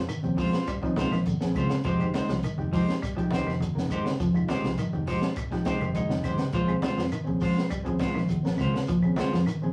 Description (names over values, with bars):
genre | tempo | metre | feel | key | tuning
afrobeat | 102 BPM | 4/4 | straight | Bb dorian | A4 = 440 Hz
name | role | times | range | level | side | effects
semi-hollow electric guitar | arpeggios | 0.0-9.7 s | Db3 to G3 | -32 LUFS | equal | none
fingered electric bass | bass | 0.0-9.7 s | F1 to F2 | -32 LUFS | equal | none
compact cocktail drum kit | drums | 0.1-9.6 s | hi-hat, kick drum, snare drum | -34 LUFS | equal | none
claves | percussion | 0.1-9.6 s | none | -47 LUFS | equal | none
shekere | percussion | 0.1-9.7 s | none | -44 LUFS | equal | none
overdriven reed electric piano | accompaniment | 0.2-9.7 s | Ab3 to G5 | -37 LUFS | equal | fast tremolo
congas | percussion | 0.2-9.3 s | none | -35 LUFS | equal | none
clean electric guitar | stabs | 0.4-9.4 s | Ab3 to C5 | -32 LUFS | equal | tremolo
room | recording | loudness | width
wet booth ambience, RT60 0.2 s | rough rehearsal-room recording, small room reverb | -27 LUFS | mono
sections
0.0-9.7 A section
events
reed electric piano fill 5.4-6.5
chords
0.0 Bbm9; 1.9 Fm9; 6.5 Bbm9